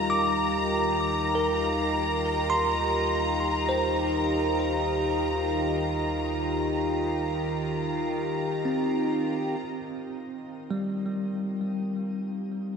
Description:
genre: ambient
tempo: free time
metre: none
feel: none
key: Eb major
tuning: A4 = 439 Hz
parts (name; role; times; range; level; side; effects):
- evolving wavetable pad; sustained chords; 0.0-12.8 s; Eb3 to Bb4; -28 LUFS; equal; chorus, built-in reverb, shimmer reverb
- bell-like tine electric piano; arpeggios; 0.0-12.8 s; G3 to D6; -30 LUFS; left 1 dB; fast stereo tremolo, ping-pong delay, shimmer reverb
- deep rumbling drone; bass; 0.0-9.6 s; Eb2; -36 LUFS; right 1 dB; built-in reverb
- warm studio violin section; texture; 0.0-9.6 s; Bb5; -31 LUFS; left 1 dB; shimmer reverb
room: wet lush hall reverb, RT60 2.7 s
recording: cassette tape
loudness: -25 LUFS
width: side -6 dB against mid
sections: 0.0-9.6 A section; 9.6-12.8 B section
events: fade-in on synth drone 0.0-9.6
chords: 0.0 Ebadd9

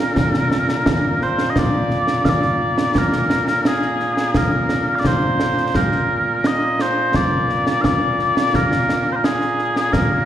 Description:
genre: scottish traditional, Scottish pipe music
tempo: 86 BPM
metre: 4/4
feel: straight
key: Bb mixolydian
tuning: A4 = 441 Hz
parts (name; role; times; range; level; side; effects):
- mellow small bagpipes; melody; 0.0-10.3 s; Bb2 to F5; -18 LUFS; equal; slapback echo
- concert snare drum and concert bass drum; drums; 0.2-10.1 s; none; -19 LUFS; equal; slapback echo
room: moderate lush hall reverb, RT60 2.2 s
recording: live gig heard through the venue's PA, recital hall reverb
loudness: -16 LUFS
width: side -10 dB against mid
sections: 0.0-1.6 A section; 1.6-10.3 B section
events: none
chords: none

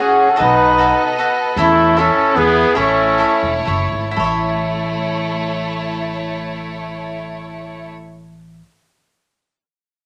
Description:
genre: mexican folk, mariachi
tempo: 119-155 BPM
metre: 3/4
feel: rubato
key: A major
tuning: A4 = 440 Hz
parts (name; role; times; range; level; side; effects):
- dark trumpet; melody; 0.0-3.7 s; E4 to B4; -18 LUFS; equal; none
- warm trumpet; second line; 0.0-3.7 s; A3 to D#4; -20 LUFS; equal; none
- cavaquinho; accompaniment; 0.0-8.7 s; E4 to F#5; -20 LUFS; equal; none
- clear studio violin section; sustained chords; 0.0-7.9 s; A3 to D#5; -25 LUFS; equal; none
- upright bass; bass; 0.4-8.6 s; E1 to E2; -27 LUFS; equal; none
room: moderate studio reverb, RT60 0.8 s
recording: none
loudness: -16 LUFS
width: mono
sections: 0.0-4.2 A section; 4.2-7.1 B section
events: slowing down 1.6-4.2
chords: 0.4 B7; 1.6 A/E; 2.4 E; 2.8 A

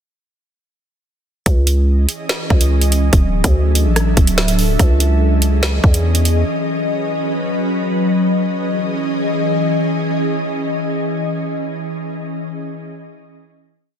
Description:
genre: hip hop, drill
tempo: 144 BPM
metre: 4/4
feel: half-time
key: C# minor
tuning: A4 = 437 Hz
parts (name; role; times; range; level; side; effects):
- ethereal airy pad; sustained chords; 1.9-12.2 s; E3 to E5; -19 LUFS; left 1 dB; ensemble chorus, built-in reverb
- growling 808-style bass; bass; 1.5-6.4 s; D1 to E2; -14 LUFS; equal; none
- drill drum kit; drums; 1.5-6.3 s; hi-hat, kick drum, rim click, snare drum; -15 LUFS; equal; none
room: light reverb, digital ambience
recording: dense, heavily limited modern master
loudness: -14 LUFS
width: side -8 dB against mid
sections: 1.5-8.1 hook; 8.1-11.5 final chord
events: none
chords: 1.5 C#madd9; 3.1 Dadd9; 4.8 C#madd9; 6.5 Badd9; 8.1 C#madd9

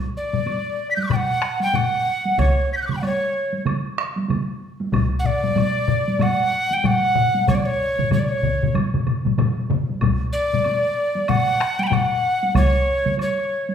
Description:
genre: japanese traditional, taiko drum ensemble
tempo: 94 BPM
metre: 4/4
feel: swing 60% on 16ths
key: F# miyako bushi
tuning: A4 = 438 Hz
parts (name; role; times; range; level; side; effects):
- breathy soprano recorder; melody; 0.2-13.7 s; C#5 to B6; -21 LUFS; equal; none
- taiko ensemble; percussion; 0.3-13.7 s; none; -27 LUFS; right 3 dB; none
- taiko ensemble; percussion; 0.3-12.1 s; none; -23 LUFS; left 6 dB; none
- woodblock; percussion; 0.5-13.4 s; none; -34 LUFS; equal; none
- solo taiko drums; percussion; 2.4-13.2 s; none; -26 LUFS; right 4 dB; none
- taiko ensemble; percussion; 2.4-12.7 s; none; -23 LUFS; equal; none
room: wet large studio reverb, RT60 1.1 s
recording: band playing live in one room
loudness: -18 LUFS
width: side -8 dB against mid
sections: 0.0-13.7 A section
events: none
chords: none

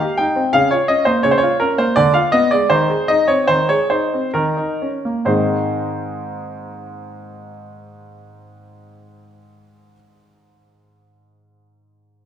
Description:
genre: classical-period piano sonatina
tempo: 63-86 BPM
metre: 3/4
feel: rubato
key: Ab major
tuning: A4 = 439 Hz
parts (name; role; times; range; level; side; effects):
- clear grand piano; solo; 0.0-12.3 s; Ab2 to G5; -15 LUFS; equal; none
room: moderate recital hall reverb, RT60 1.4 s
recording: none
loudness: -14 LUFS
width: side -9 dB against mid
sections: 0.0-5.3 A section; 5.3-10.7 B section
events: slowing down 0.0-5.3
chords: 0.0 Cm; 0.5 Bbm/Db; 2.0 Ddim7; 2.7 Ab/Eb; 4.3 Eb5; 5.3 Ab

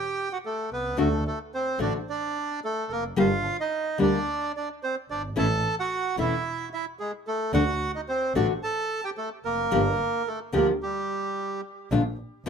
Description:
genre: tango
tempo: 110 BPM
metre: 4/4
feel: rubato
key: G minor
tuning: A4 = 440 Hz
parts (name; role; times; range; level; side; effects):
- bandoneon; melody; 0.0-11.6 s; G3 to A5; -28 LUFS; right 2 dB; plate reverb, tape echo
- warm double bass; bass; 0.7-12.5 s; E1 to D2; -29 LUFS; right 2 dB; none
- nylon-string guitar; accompaniment; 1.0-12.5 s; D3 to G4; -24 LUFS; left 2 dB; none
room: moderate booth ambience, RT60 0.2 s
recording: none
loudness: -24 LUFS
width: side -6 dB against mid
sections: 0.0-11.9 A section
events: none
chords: 0.0 A7(no3); 1.0 D; 3.2 G5; 5.4 A; 7.5 D; 9.7 Gm7; 11.9 Bbmaj7

